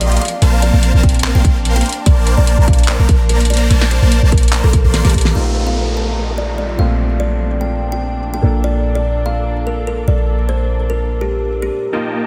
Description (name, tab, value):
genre	future bass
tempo	146 BPM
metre	4/4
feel	swing 53% on 16ths, half-time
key	Bb major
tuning	A4 = 439 Hz
part	kalimba	melody	0.0-11.8 s	G4 to A5	-25 LUFS	equal	sidechain pumping, digital delay
part	muted studio string section	sustained chords	0.0-12.3 s	Bb2 to A4	-30 LUFS	equal	sidechain pumping, low-pass filter
part	supersaw chords	riff	0.0-5.3, 11.9-12.3 s	Bb3 to C6	-23 LUFS	equal	phaser, sidechain pumping, low-pass filter
part	warm 808-style bass	bass	0.0-11.7 s	Bb1	-17 LUFS	equal	tube saturation, sidechain pumping
part	pop drum kit	drums	0.0-5.4 s	crash cymbal, handclaps, hi-hat, snare drum	-23 LUFS	equal	low-pass filter on hats, soft clipping on snare, low-pass filter on snare, low-pass filter on cymbals
part	electronic kick drum	drums	1.0-5.2 s	none	-16 LUFS	equal	none
part	felt-muted upright piano	accompaniment	5.3-12.3 s	Bb2 to A4	-27 LUFS	equal	sidechain pumping
part	downlifter	sound effects	5.3-8.6 s	none	-29 LUFS	equal	none
room	light reverb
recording	dense, heavily limited modern master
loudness	-15 LUFS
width	mono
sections	0.0-5.3 A section; 5.3-11.9 B section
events	drop 0.0-5.3; drum fill 4.9-5.3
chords	0.2 Dm7/Bb; 1.9 Bbmaj7; 5.3 F7/Bb; 6.8 Dm7/Bb; 8.4 Bbmaj7